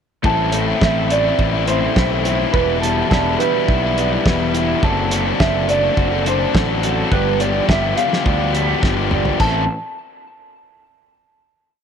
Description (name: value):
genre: indie rock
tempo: 105 BPM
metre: 4/4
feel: straight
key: A minor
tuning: A4 = 440 Hz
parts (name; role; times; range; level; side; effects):
- biting overdriven guitar; riff; 0.2-9.6 s; E2 to A4; -20 LUFS; left 12 dB; none
- raw garage guitar; riff; 0.2-9.6 s; G2 to C5; -24 LUFS; right 13 dB; overdrive, wide subtle chorus, tape echo
- fuzz fingered electric bass; bass; 0.2-9.7 s; E1 to D2; -22 LUFS; equal; overdrive
- cloth-damped thuddy drum kit; drums; 0.2-9.5 s; crash cymbal, hi-hat, kick drum, snare drum, toms; -19 LUFS; right 1 dB; none
- electric guitar through a small old amp; melody; 0.3-9.7 s; A4 to A5; -21 LUFS; right 2 dB; analog chorus
room: small room reverb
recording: 1960s-style stereo with parts hard left and right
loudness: -15 LUFS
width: side -7 dB against mid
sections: 0.2-9.4 verse; 9.4-11.7 final chord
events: drum fill 8.8-9.4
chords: 0.2 Am; 2.5 Em7; 4.8 D7/F#; 7.1 G7; 9.4 Am